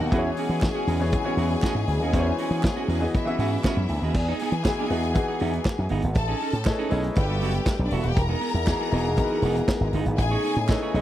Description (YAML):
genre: disco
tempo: 119 BPM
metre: 4/4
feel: straight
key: unclear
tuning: A4 = 442 Hz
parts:
  - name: bright studio string section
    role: second line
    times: 0.0-10.9 s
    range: D4 to A#5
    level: -31 LUFS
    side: left 4 dB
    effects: none
  - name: clean electric guitar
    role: accompaniment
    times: 0.0-11.0 s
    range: B3 to C#5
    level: -32 LUFS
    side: right 9 dB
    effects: spring reverb
  - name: clear grand piano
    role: accompaniment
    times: 0.0-11.0 s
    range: B2 to E5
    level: -29 LUFS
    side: left 2 dB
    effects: none
  - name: mellow French horn section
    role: sustained chords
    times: 0.0-4.1, 8.2-11.0 s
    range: C#3 to G#4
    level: -31 LUFS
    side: left 2 dB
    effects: none
  - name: slap bass with an envelope filter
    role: bass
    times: 0.0-11.0 s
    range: D#1 to E3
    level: -25 LUFS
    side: equal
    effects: none
  - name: vintage drum kit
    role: drums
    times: 0.1-11.0 s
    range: crash cymbal, hi-hat, kick drum, snare drum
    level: -25 LUFS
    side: equal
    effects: none
  - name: group handclap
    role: percussion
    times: 0.6-10.8 s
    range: none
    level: -39 LUFS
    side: right 7 dB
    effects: none
room: light reverb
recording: dry, close 1970s-style studio recording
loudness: -22 LUFS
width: side -12 dB against mid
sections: 0.0-4.2 A section; 4.2-11.0 B section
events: none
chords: 0.1 E69; 4.2 Emaj7; 6.2 Amaj9#11; 7.2 Gmaj9; 8.2 Emaj7; 10.2 Amaj9#11